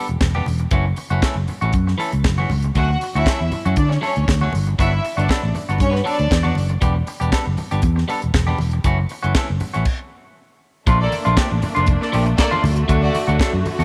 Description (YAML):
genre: disco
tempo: 118 BPM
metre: 4/4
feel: straight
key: unclear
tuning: A4 = 441 Hz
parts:
  - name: clean electric guitar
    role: accompaniment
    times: 0.0-13.8 s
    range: E3 to A4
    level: -27 LUFS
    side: equal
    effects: none
  - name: fingered electric bass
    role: bass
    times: 0.1-13.8 s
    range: E1 to D3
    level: -21 LUFS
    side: equal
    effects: none
  - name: tight funk drum kit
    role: drums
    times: 0.1-13.8 s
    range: crash cymbal, hi-hat, kick drum, snare drum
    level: -24 LUFS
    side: equal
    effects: none
  - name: congas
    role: percussion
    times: 0.2-13.8 s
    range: none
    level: -32 LUFS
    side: equal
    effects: none
  - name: bright studio violin section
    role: second line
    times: 2.7-6.5, 11.0-13.1 s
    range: A3 to F#5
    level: -27 LUFS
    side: equal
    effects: none
  - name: rich studio string section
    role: sustained chords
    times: 10.9-13.8 s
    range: D3 to F#4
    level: -28 LUFS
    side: equal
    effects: none
room: light reverb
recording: none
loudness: -19 LUFS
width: mono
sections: 0.0-10.9 A section; 10.9-13.8 B section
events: stop 9.9-10.9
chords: 0.0 Em7; 0.7 F#m7; 2.8 Dmaj7; 4.5 Gmaj7; 6.8 Em7; 8.8 F#m7; 9.9 N.C.; 10.9 Bbmaj7; 12.6 D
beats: 0.21 | 0.72 1.23 1.73 2.24 | 2.75 3.26 3.77 4.27 | 4.78 5.29 5.80 6.31 | 6.81 7.32 7.83 8.34 | 8.84 9.35 9.86 10.36 | 10.87 11.37 11.88 12.38 | 12.89 13.39